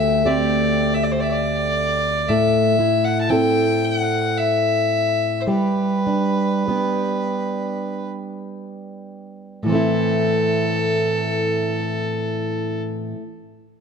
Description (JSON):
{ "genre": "celtic folk, Celtic slow air", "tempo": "37-61 BPM", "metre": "3/4", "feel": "rubato", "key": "A minor", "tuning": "A4 = 441 Hz", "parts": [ { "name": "rich fiddle", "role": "melody", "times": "0.0-12.8 s", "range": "A4 to A5", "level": "-22 LUFS", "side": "left 1 dB", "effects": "none" }, { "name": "fingerpicked plugged-in steel-string acoustic guitar", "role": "accompaniment", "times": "0.0-13.2 s", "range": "D2 to A4", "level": "-20 LUFS", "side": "equal", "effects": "none" } ], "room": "moderate scoring stage reverb, RT60 1.8 s", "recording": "dark, warm production", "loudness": "-18 LUFS", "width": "side -6 dB against mid", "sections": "0.0-9.7 A section; 9.7-13.8 B section", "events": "slowing down 2.3-9.7", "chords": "0.0 D7sus4; 2.3 Am; 5.5 G; 9.7 Am", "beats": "0.26 1.29 | 2.29 3.29 4.36 | 5.47 6.68 8.07 | 9.65 11.24 12.83" }